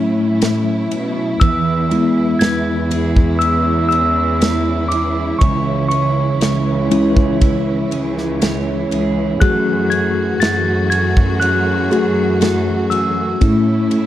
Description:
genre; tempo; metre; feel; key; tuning
pop ballad; 60 BPM; 4/4; straight; unclear; A4 = 439 Hz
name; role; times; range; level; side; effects
mellow tine electric piano; accompaniment; 0.0-14.1 s; G#3 to A6; -17 LUFS; left 2 dB; medium stereo tremolo
dark studio string section; sustained chords; 0.0-14.1 s; E3 to F#4; -24 LUFS; right 3 dB; none
warm studio cello section; bass; 0.0-14.1 s; C#2 to B2; -20 LUFS; left 1 dB; none
modern studio drum kit; drums; 0.4-14.1 s; kick drum, ride cymbal, snare drum; -16 LUFS; equal; none
picked steel-string acoustic guitar; arpeggios; 1.4-14.1 s; A2 to C#5; -24 LUFS; right 8 dB; none
room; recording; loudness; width
light reverb, small room ambience; dark, warm production; -14 LUFS; side -13 dB against mid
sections
0.0-14.1 A section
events
tine electric piano solo 0.0-14.1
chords
0.0 A; 1.4 E; 5.4 C#m; 9.4 F#madd9; 13.4 A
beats
0.41 | 1.42 2.42 3.42 4.42 | 5.42 6.42 7.42 8.41 | 9.41 10.41 11.41 12.41 | 13.41

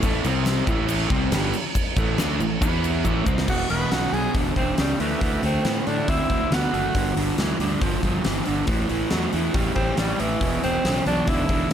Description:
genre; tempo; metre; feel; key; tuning
classic rock; 139 BPM; 4/4; straight; unclear; A4 = 440 Hz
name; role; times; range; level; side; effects
overdriven electric guitar; riff; 0.0-11.7 s; E2 to E4; -24 LUFS; right 1 dB; none
fuzz fingered electric bass; bass; 0.0-11.6 s; E1 to A2; -27 LUFS; equal; overdrive
huge arena drum kit; drums; 0.0-11.7 s; crash cymbal, hi-hat, kick drum, snare drum; -25 LUFS; equal; none
egg shaker; percussion; 0.0-3.4 s; none; -40 LUFS; left 14 dB; none
raspy tenor saxophone; melody; 3.5-11.7 s; E3 to B4; -26 LUFS; right 1 dB; none
room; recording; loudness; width
light reverb, small room ambience; none; -20 LUFS; side -9 dB against mid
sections
0.0-3.5 A section; 3.5-11.7 B section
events
drum fill 3.0-3.5; tenor saxophone solo 3.5-11.7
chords
0.2 C5; 0.7 A5; 2.6 E5; 3.0 A5; 3.5 E5; 5.0 D; 6.9 G5; 8.7 A5; 10.4 E5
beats
| 0.03 0.46 0.89 1.32 | 1.75 2.18 2.61 3.04 | 3.48 3.91 4.34 4.78 | 5.21 5.64 6.08 6.51 | 6.94 7.38 7.81 8.24 | 8.68 9.11 9.54 9.97 | 10.41 10.84 11.27 11.71

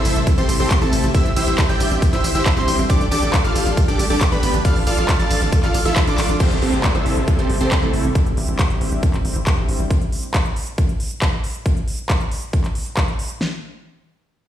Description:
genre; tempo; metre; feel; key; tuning
uplifting trance; 137 BPM; 4/4; straight; A minor; A4 = 440 Hz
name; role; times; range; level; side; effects
supersaw stab; melody; 0.0-8.1 s; A3 to A5; -22 LUFS; right 1 dB; sidechain pumping, digital delay
plucky unison lead; second line; 0.0-6.3 s; A5 to A6; -27 LUFS; equal; sidechain pumping, digital delay
tight sequencer bass; bass; 0.1-9.9 s; A1; -22 LUFS; equal; sidechain pumping
big-room dance drum kit; drums; 0.1-13.4 s; crash cymbal, handclaps, hi-hat, ride cymbal, tambourine; -25 LUFS; equal; none
big-room dance drum kit; drums; 0.3-13.5 s; kick drum, snare drum; -19 LUFS; equal; none
downlifter; sound effects; 6.4-9.9 s; none; -29 LUFS; left 1 dB; none
room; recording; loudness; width
light reverb; played on a big sound system in a bare room, stone room reverb; -16 LUFS; side -11 dB against mid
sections
0.0-6.4 A section; 6.4-13.4 B section; 13.4-14.5 C section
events
drop 0.0-6.4; drum fill 6.2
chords
0.0 Am7; 1.1 Cadd9/A; 2.9 Gsus2/A; 4.6 Dm/A; 6.4 Am7; 8.2 Cadd9/A; 9.9 N.C.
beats
0.27 0.71 | 1.15 1.58 2.02 2.46 | 2.90 3.33 3.77 4.21 | 4.65 5.09 5.53 5.96 | 6.40 6.84 7.28 7.71 | 8.15 8.59 9.03 9.47 | 9.90 10.34 10.78 11.22 | 11.66 12.09 12.53 12.97 | 13.41

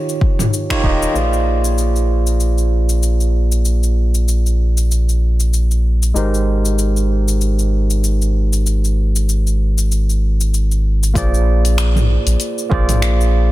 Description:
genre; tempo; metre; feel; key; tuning
sunset chillout; 96 BPM; 4/4; swing 57% on 16ths; unclear; A4 = 435 Hz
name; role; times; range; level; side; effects
barky tine electric piano; accompaniment; 0.0-13.5 s; Eb3 to Eb5; -21 LUFS; right 2 dB; overdrive, auto-pan, ping-pong delay
deep house drum kit; drums; 0.1-13.3 s; cabasa, finger snaps, hi-hat, toms; -23 LUFS; left 2 dB; overdrive, soft clipping on snare
electronic kick drum; drums; 0.2-1.0, 11.2-12.9 s; none; -17 LUFS; equal; overdrive
round analog bass; bass; 0.8-13.5 s; Eb1 to Bb1; -15 LUFS; equal; tube saturation
room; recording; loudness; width
digital ambience; dense, heavily limited modern master; -14 LUFS; side -16 dB against mid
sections
0.0-1.2 A section; 1.2-11.2 B section; 11.2-13.5 C section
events
band accent 0.7-1.0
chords
0.0 Eb9; 1.2 Bb7; 6.2 Abmaj7; 11.2 Bb7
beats
0.53 | 1.16 1.78 2.41 3.03 | 3.66 4.28 4.91 5.53 | 6.16 6.78 7.41 8.03 | 8.66 9.28 9.91 10.53 | 11.16 11.78 12.41 13.03

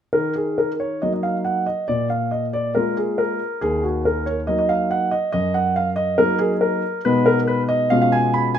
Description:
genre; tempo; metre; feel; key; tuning
classical-period piano sonatina; 139 BPM; 4/4; rubato; Eb minor; A4 = 440 Hz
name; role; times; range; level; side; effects
warm concert grand piano; solo; 0.1-8.6 s; Eb2 to B5; -18 LUFS; equal; none
room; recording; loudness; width
light reverb; close, detailed microphones; -18 LUFS; side -9 dB against mid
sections
0.1-8.6 A section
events
none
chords
0.1 Ebm; 1.9 Bb5; 3.6 Ebm; 5.3 Ebm/Gb; 7.1 G#m/B; 7.9 C#7/B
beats
| 0.13 0.58 1.02 1.45 | 1.89 2.32 2.75 3.19 | 3.62 4.05 4.48 4.91 | 5.34 5.76 6.19 6.62 | 7.05 7.48 7.91 8.35

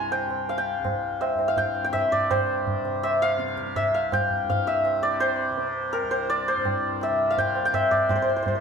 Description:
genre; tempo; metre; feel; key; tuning
indian classical, Hindustani; 166 BPM; 4/4; straight; C major; A4 = 440 Hz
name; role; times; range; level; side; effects
santur; melody; 0.0-8.6 s; Bb4 to C6; -23 LUFS; left 1 dB; none
tanpura; drone; 0.0-8.6 s; C2 to C3; -34 LUFS; left 2 dB; none
tabla; percussion; 0.1-8.6 s; none; -30 LUFS; right 4 dB; none
room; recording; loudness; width
wet stone room reverb, RT60 1.1 s; band playing live in one room; -22 LUFS; side -6 dB against mid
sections
0.0-2.3 A section; 2.3-8.6 B section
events
none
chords
none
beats
0.12 0.48 | 0.85 1.21 1.58 1.94 | 2.31 2.67 3.03 3.40 | 3.76 4.12 4.48 4.84 | 5.21 5.57 5.93 6.29 | 6.65 7.01 7.37 7.73 | 8.09 8.45

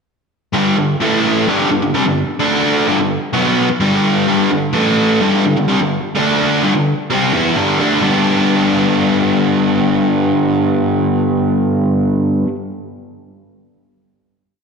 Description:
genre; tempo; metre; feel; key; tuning
rock; 128 BPM; 4/4; straight; G major; A4 = 440 Hz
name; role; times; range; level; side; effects
biting overdriven guitar; solo; 0.5-12.5 s; G2 to E4; -12 LUFS; equal; slapback echo
room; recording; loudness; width
wet lush hall reverb, RT60 2.2 s; big arena sound; -12 LUFS; side -5 dB against mid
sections
0.5-8.0 riff; 8.0-11.8 final chord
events
none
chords
0.5 G5; 1.0 A5; 1.5 G5; 2.4 D5; 2.9 G; 4.7 A5; 5.2 G5; 6.2 D5; 6.6 G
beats
| 0.52 0.98 1.45 1.92 | 2.39 2.86 3.33 3.80 | 4.27 4.74 5.21 5.68 | 6.15 6.62 7.09 7.56 | 8.03 8.49 8.96 9.43 | 9.89 10.36 10.82 11.29

